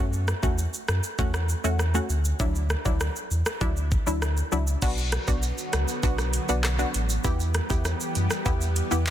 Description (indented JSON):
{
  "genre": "dancehall",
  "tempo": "99 BPM",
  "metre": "4/4",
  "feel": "straight",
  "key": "unclear",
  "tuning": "A4 = 439 Hz",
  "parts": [
    { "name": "punchy chord stab", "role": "accompaniment", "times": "0.0-9.1 s", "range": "F#3 to G4", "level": "-30 LUFS", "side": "left 1 dB", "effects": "chorus" },
    { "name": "sub bass with octave", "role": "bass", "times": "0.0-9.1 s", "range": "A1 to F#2", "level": "-26 LUFS", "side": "equal", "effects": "none" },
    { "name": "island pop drum kit", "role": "drums", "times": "0.1-9.1 s", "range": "crash cymbal, handclaps, hi-hat, kick drum, rim click, shaker", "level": "-28 LUFS", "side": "equal", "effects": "soft clipping on snare" },
    { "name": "lush unison pad", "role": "sustained chords", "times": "5.2-9.1 s", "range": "D3 to G4", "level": "-33 LUFS", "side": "equal", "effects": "chorus, phaser, sidechain pumping" },
    { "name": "maracas and timbales", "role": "percussion", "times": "4.8-9.1 s", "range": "none", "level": "-40 LUFS", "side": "right 8 dB", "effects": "none" }
  ],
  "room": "little or no reverb",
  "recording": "dense, heavily limited modern master",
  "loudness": "-23 LUFS",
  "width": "side -11 dB against mid",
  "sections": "0.0-4.8 A section; 4.8-9.1 B section",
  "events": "none",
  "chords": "0.0 F#m; 2.4 Dadd9; 4.8 Bm; 7.2 Em",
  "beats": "0.58 1.19 1.79 | 2.40 3.01 3.61 4.22 | 4.83 5.43 6.04 6.64 | 7.25 7.86 8.46 9.07"
}